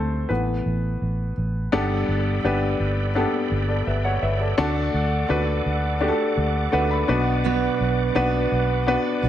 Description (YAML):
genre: piano-driven pop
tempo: 84 BPM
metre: 4/4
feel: straight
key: unclear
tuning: A4 = 441 Hz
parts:
  - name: clear grand piano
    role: accompaniment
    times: 0.0-9.3 s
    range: G2 to B5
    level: -23 LUFS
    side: left 2 dB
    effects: none
  - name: vintage muted fingered electric bass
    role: bass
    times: 0.0-9.3 s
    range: G1 to D2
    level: -24 LUFS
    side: right 1 dB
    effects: none
  - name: bright tonewheel organ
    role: sustained chords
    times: 1.7-9.3 s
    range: A4 to D6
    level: -32 LUFS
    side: right 2 dB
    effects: chorus vibrato, fast rotary speaker
  - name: fingerpicked steel-string acoustic guitar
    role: riff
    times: 7.4-9.3 s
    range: B2 to B4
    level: -25 LUFS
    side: right 13 dB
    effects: none
room: moderate large studio reverb, RT60 1.3 s, studio reverb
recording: nothing above 10.7 kHz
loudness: -20 LUFS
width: side -11 dB against mid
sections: 0.0-1.7 A section; 1.7-9.3 B section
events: grand piano solo 0.0-1.7; grand piano fill 6.4-7.4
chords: 0.3 Asus2; 1.7 Gadd9; 4.6 D; 7.1 Bm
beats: 0.30 1.02 | 1.73 2.45 3.16 3.87 | 4.59 5.30 6.02 6.73 | 7.45 8.16 8.87